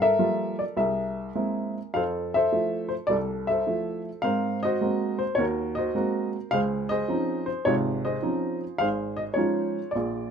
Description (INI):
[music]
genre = solo jazz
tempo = 105 BPM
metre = 4/4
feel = swing 68% on 8ths, rubato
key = Db major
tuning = A4 = 440 Hz
[part]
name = warm upright piano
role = solo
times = 0.0-10.3 s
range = Ab1 to F5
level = -24 LUFS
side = equal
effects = none
[sound]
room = light reverb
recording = minimal, uncompressed stereo recording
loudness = -24 LUFS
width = side -7 dB against mid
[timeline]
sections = 0.0-10.3 A section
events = none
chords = 0.0 Gm9; 0.8 Caug7; 1.9 Fmaj7; 4.2 Ab9; 6.5 Dbmaj9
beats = 0.19 0.77 1.36 | 1.94 2.52 3.10 3.67 | 4.25 4.81 5.38 5.95 | 6.51 7.07 7.64 8.21 | 8.79 9.36 9.95